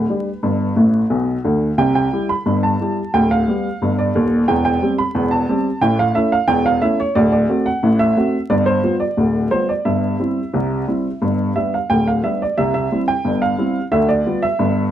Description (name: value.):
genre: ragtime piano.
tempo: 89 BPM.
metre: 2/4.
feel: straight.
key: C major.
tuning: A4 = 445 Hz.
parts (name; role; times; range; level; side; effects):
warm upright piano; solo; 0.0-14.9 s; D1 to B5; -15 LUFS; equal; none.
room: moderate club reverb, RT60 0.7 s.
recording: vinyl crackle.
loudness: -15 LUFS.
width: side -11 dB against mid.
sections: 0.0-12.6 A section; 12.6-14.9 A section.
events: upright piano fill 0.8-1.8.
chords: 0.0 G; 1.8 C; 3.1 G7/D; 4.5 C/E; 5.8 A; 7.2 D7; 8.5 G7; 9.9 C/G; 11.2 G; 12.6 C; 13.9 G7/D.